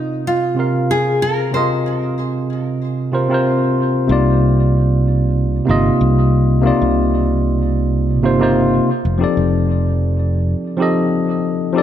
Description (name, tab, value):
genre	sunset chillout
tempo	94 BPM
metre	4/4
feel	swing 54% on 16ths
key	C minor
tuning	A4 = 441 Hz
part	nylon-string guitar	melody	0.0-3.4 s	Eb4 to C5	-20 LUFS	right 1 dB	digital delay
part	tine electric piano	accompaniment	0.0-11.8 s	C3 to F5	-16 LUFS	moving between left 4 dB and right 3 dB	auto-pan, digital delay
part	fretless electric bass	bass	4.1-10.5 s	F1 to C2	-16 LUFS	equal	none
room	light reverb, small room ambience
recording	none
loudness	-14 LUFS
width	side -10 dB against mid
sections	0.0-4.1 A section; 4.1-11.8 B section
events	none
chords	0.0 Ab69/C (rootless); 4.1 Cm11; 8.9 F13